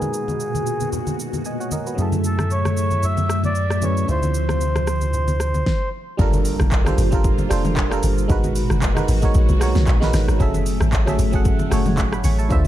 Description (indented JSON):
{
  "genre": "amapiano",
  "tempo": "114 BPM",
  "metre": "4/4",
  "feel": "swing 55% on 16ths",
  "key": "unclear",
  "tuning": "A4 = 438 Hz",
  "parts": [
    { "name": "mellow accordion", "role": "melody", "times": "0.0-5.9 s", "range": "Ab4 to E5", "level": "-26 LUFS", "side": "equal", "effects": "low-pass filter, ping-pong delay" },
    { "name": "barking FM electric piano", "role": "accompaniment", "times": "0.0-12.7 s", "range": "C#3 to C#6", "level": "-26 LUFS", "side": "right 3 dB", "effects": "chorus, low-pass filter" },
    { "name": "string machine, violas", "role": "sustained chords", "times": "0.0-12.7 s", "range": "A2 to E5", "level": "-28 LUFS", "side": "left 1 dB", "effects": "phaser, ensemble chorus, low-pass filter" },
    { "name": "deep house drum kit", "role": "drums", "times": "0.0-12.7 s", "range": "handclaps, hi-hat, kick drum, rim click, shaker, snare drum, toms", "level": "-22 LUFS", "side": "equal", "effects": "overdrive" },
    { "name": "congas", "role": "percussion", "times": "0.0-12.7 s", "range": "none", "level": "-28 LUFS", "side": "left 1 dB", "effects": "none" },
    { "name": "sub bass with octave", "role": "bass", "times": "2.0-5.6 s", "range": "D2 to F#2", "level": "-21 LUFS", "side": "equal", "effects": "none" },
    { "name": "deep log drum bass", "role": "bass", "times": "6.2-12.7 s", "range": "F1 to D2", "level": "-20 LUFS", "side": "equal", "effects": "none" },
    { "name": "impact", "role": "sound effects", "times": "6.2-8.3 s", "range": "none", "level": "-28 LUFS", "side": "equal", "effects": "none" }
  ],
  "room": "little or no reverb",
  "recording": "dark, warm production",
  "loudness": "-17 LUFS",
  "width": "side -13 dB against mid",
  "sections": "0.0-6.2 A section; 6.2-12.7 B section",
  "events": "filter sweep 0.0-6.2; stop 5.7-6.2; drop 6.2-12.7; impact 6.2-8.3",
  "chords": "0.0 Abm9; 2.0 F#m9; 4.1 Dm9; 6.2 Gm9; 8.3 Abm9; 10.4 F#m9",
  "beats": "0.40 0.93 1.45 | 1.98 2.51 3.03 3.56 | 4.08 4.61 5.14 5.66 | 6.19 6.72 7.24 7.77 | 8.30 8.82 9.35 9.88 | 10.40 10.93 11.45 11.98 | 12.51"
}